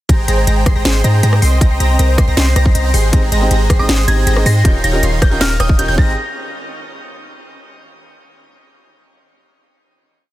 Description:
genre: future bass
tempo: 158 BPM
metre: 4/4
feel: half-time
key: Ab major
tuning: A4 = 440 Hz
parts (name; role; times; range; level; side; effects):
- thumb-piano-like synth pluck; arpeggios; 0.1-6.2 s; F4 to G5; -29 LUFS; right 3 dB; none
- wide unison pluck; arpeggios; 0.1-6.1 s; G6 to C7; -27 LUFS; equal; sidechain pumping, tape echo
- supersaw chords; riff; 0.1-6.1 s; Eb3 to C6; -21 LUFS; equal; sidechain pumping, tape echo
- warm 808-style bass; bass; 0.1-6.2 s; Eb1 to Ab2; -14 LUFS; equal; sidechain pumping
- electronic kick drum; drums; 0.1-6.1 s; none; -12 LUFS; equal; none
- trap drum kit; drums; 0.1-5.9 s; hi-hat, rim click, snare drum; -20 LUFS; left 1 dB; none
- warm concert grand piano; accompaniment; 3.1-6.1 s; C4 to Eb5; -24 LUFS; equal; sidechain pumping, tape echo
- soft synth bell; melody; 3.8-6.2 s; Eb6 to Bb6; -22 LUFS; right 1 dB; chorus, sidechain pumping, tape echo
room: little or no reverb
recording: dense, heavily limited modern master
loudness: -11 LUFS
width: side -15 dB against mid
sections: 0.1-6.2 drop; 6.2-7.7 final hit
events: drop 0.1-6.2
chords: 0.1 Abmaj7; 1.4 Cm7; 2.9 Abmaj7; 4.6 Eb9; 6.0 Abmaj7; 6.2 N.C.

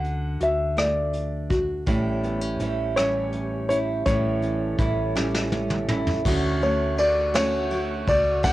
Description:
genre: six-eight pop ballad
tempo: 55 BPM (dotted quarters)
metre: 6/8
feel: straight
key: D major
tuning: A4 = 440 Hz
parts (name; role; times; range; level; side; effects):
- warm concert grand piano; melody; 0.0-8.5 s; C#5 to F#5; -24 LUFS; left 1 dB; cassette tape
- nylon-string guitar; accompaniment; 0.0-8.5 s; A2 to F#4; -28 LUFS; right 2 dB; cassette tape
- hollow-body short-scale fingered electric bass; bass; 0.0-8.5 s; A1 to D2; -30 LUFS; equal; none
- vintage brush drum kit; drums; 0.0-8.5 s; crash cymbal, hi-hat, kick drum, ride cymbal, rim click, snare drum, toms; -27 LUFS; equal; cassette tape
- mellow tonewheel organ; sustained chords; 1.9-8.5 s; A3 to C#6; -33 LUFS; left 1 dB; slow rotary speaker, cassette tape
- picked steel-string acoustic guitar; arpeggios; 1.9-8.5 s; A2 to F#4; -30 LUFS; right 3 dB; cassette tape, analog delay
room: moderate booth ambience, RT60 0.2 s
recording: home recording on cassette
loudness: -21 LUFS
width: side -16 dB against mid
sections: 0.0-6.3 A section; 6.3-8.5 B section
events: drum fill 5.2-6.3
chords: 0.0 Dmaj7; 1.9 A7; 6.3 Dmaj7

